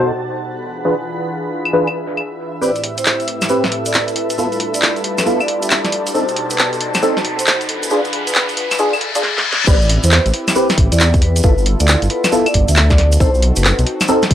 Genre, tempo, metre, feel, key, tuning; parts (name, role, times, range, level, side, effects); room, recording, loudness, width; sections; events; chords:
UK garage, two-step garage; 136 BPM; 4/4; swing 64% on 16ths; A minor; A4 = 442 Hz
warm analog pad; sustained chords; 0.0-14.3 s; A2 to C5; -25 LUFS; equal; chorus, sidechain pumping
percussive organ stab; stabs; 0.0-14.2 s; B2 to C5; -18 LUFS; equal; ensemble chorus, analog delay
granular cloud pad; texture; 0.0-9.2 s; G4 to B5; -26 LUFS; equal; built-in reverb, sidechain pumping
garage drum kit; drums; 1.7-14.3 s; claves, crash cymbal, handclaps, hi-hat, snare drum; -17 LUFS; equal; low-pass filter on perc, low-pass filter on hats, low-pass filter on snare, low-pass filter on cymbals, low-pass filter on room
vibraphone with medium mallets; melody; 2.6-13.8 s; G#4 to E5; -22 LUFS; moving between left 4 dB and right 3 dB; auto-pan, analog delay
tube shaker; percussion; 2.6-14.3 s; -27 LUFS; right 2 dB
riser and reverse cymbal; sound effects; 5.4-9.7 s; -24 LUFS; left 3 dB
dark detuned saw bass; bass; 9.7-14.3 s; F#1 to E2; -14 LUFS; equal
electronic kick drum; drums; 9.7-14.3 s; -14 LUFS; equal
light reverb; dry, gritty hardware recording, high-pass filter; -13 LUFS; side -11 dB against mid
0.0-2.6 A section; 2.6-9.7 B section; 9.7-14.3 C section
filter sweep on analog synth pad 0.0-2.6; build-up 2.6-9.7; riser 5.4-9.7; reverse cymbal 8.8-9.7; drum fill 9.2-9.7; drop 9.7-14.3
0.0 B7b9; 0.6 E7b9; 2.6 Am9; 4.4 G13; 6.1 B7b9; 7.7 E7b9; 9.7 Am9; 11.4 G13; 13.2 B7b9